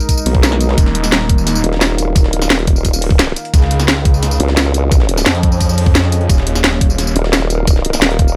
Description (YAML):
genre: dark technical drum and bass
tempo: 174 BPM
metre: 4/4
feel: straight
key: unclear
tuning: A4 = 440 Hz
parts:
  - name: deep dark ambient pad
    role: sustained chords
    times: 0.0-8.4 s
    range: Ab3 to F5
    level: -26 LUFS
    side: equal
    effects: chorus, built-in reverb, sidechain pumping
  - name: drum and bass drum kit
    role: drums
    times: 0.0-8.3 s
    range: hi-hat, snare drum, tambourine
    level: -18 LUFS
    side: equal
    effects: none
  - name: breakbeat sampler-style drum kit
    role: drums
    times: 0.1-8.3 s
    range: hi-hat, snare drum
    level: -29 LUFS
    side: equal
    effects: none
  - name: electronic kick drum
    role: drums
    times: 0.1-8.3 s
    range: none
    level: -14 LUFS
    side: equal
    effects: none
  - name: formant-sweep wobble bass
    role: bass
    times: 0.3-8.4 s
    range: Eb1 to Db2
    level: -18 LUFS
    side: equal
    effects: chorus
  - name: phased detuned saw bass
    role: bass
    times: 0.8-7.1 s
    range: Eb1 to F2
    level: -18 LUFS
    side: equal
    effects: phaser, overdrive
room: little or no reverb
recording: none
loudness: -13 LUFS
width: mono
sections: 0.0-8.4 A section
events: none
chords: 0.0 Abm; 0.8 Eb5; 3.5 Db; 6.3 Eb5